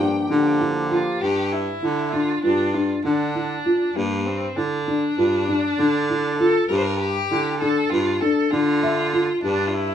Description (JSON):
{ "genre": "contemporary instrumental, chamber music in an uneven meter", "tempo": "197 BPM (eighths)", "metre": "9/8", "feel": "straight", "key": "G dorian", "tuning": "A4 = 441 Hz", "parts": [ { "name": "rich violin", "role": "melody", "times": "0.0-9.9 s", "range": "Bb3 to G5", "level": "-26 LUFS", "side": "left 2 dB", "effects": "none" }, { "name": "hand-pumped harmonium", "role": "sustained chords", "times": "0.0-1.2 s", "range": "F3 to G4", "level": "-28 LUFS", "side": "equal", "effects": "none" }, { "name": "felt-muted upright piano", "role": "arpeggios", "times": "0.0-9.8 s", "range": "D4 to E5", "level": "-22 LUFS", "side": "left 1 dB", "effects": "none" }, { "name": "clear baritone saxophone", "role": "bass", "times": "0.0-9.9 s", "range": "G2 to D3", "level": "-24 LUFS", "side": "right 2 dB", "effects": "none" } ], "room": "light reverb", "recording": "small room ambience", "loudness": "-19 LUFS", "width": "side -9 dB against mid", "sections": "0.0-1.2 A section; 1.2-9.9 B section", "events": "none", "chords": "0.0 Gm7; 1.2 G5" }